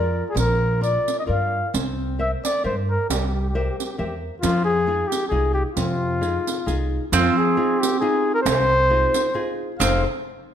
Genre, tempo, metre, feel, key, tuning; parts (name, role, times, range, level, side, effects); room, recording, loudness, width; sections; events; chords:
italian folk, Italian serenade; 134 BPM; 3/4; swing 54% on 8ths; F dorian; A4 = 440 Hz
trumpet with bucket mute; melody; 0.0-10.0 s; F4 to F5; -22 LUFS; left 1 dB
nylon-string guitar; accompaniment; 0.0-10.0 s; F2 to E5; -27 LUFS; left 3 dB
upright bass; bass; 0.0-10.0 s; F1 to G2; -24 LUFS; right 1 dB
riq; percussion; 0.4-10.0 s; -28 LUFS; right 7 dB
mandolin; second line; 7.1-10.0 s; C4; -24 LUFS; right 6 dB
moderate recital hall reverb, RT60 1.4 s; -19 LUFS; side -9 dB against mid
0.0-7.1 A section; 7.1-9.8 B section
0.0 Bb; 1.7 C7; 4.4 Fm7